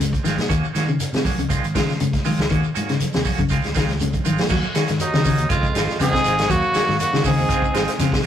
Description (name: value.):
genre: afrobeat.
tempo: 120 BPM.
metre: 4/4.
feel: straight.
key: Eb dorian.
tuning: A4 = 440 Hz.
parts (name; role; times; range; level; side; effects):
clean electric guitar; arpeggios; 0.0-8.3 s; C3 to Gb3; -23 LUFS; left 4 dB; none.
fingered electric bass; bass; 0.0-8.3 s; Ab1 to Eb3; -25 LUFS; right 1 dB; none.
vintage drum kit; drums; 0.0-8.3 s; crash cymbal, hi-hat, kick drum, snare drum; -23 LUFS; equal; none.
congas; percussion; 0.0-4.5 s; none; -28 LUFS; right 3 dB; none.
shekere; percussion; 0.0-8.2 s; none; -33 LUFS; right 5 dB; none.
clean electric guitar; stabs; 0.2-8.3 s; Eb3 to Gb4; -28 LUFS; right 5 dB; tremolo, analog delay.
clear trumpet; melody; 5.0-8.2 s; Eb4 to Ab4; -22 LUFS; equal; none.
warm alto saxophone; second line; 5.0-8.2 s; Gb3 to C4; -29 LUFS; right 6 dB; none.
warm bass trombone; second line; 5.0-8.2 s; Eb2 to Ab2; -30 LUFS; left 1 dB; none.
room: moderate stone room reverb, RT60 1.0 s.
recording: rough rehearsal-room recording, tube saturation.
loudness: -17 LUFS.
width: side -10 dB against mid.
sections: 0.0-4.5 A section; 4.5-8.3 B section.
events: drum fill 3.9-4.5.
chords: 0.5 Ebm7; 1.5 Dbmaj9; 2.5 Ebm7; 3.5 Dbmaj9; 4.5 Ebm7; 5.5 Dbmaj9; 6.5 Ebm7; 7.5 Dbmaj9.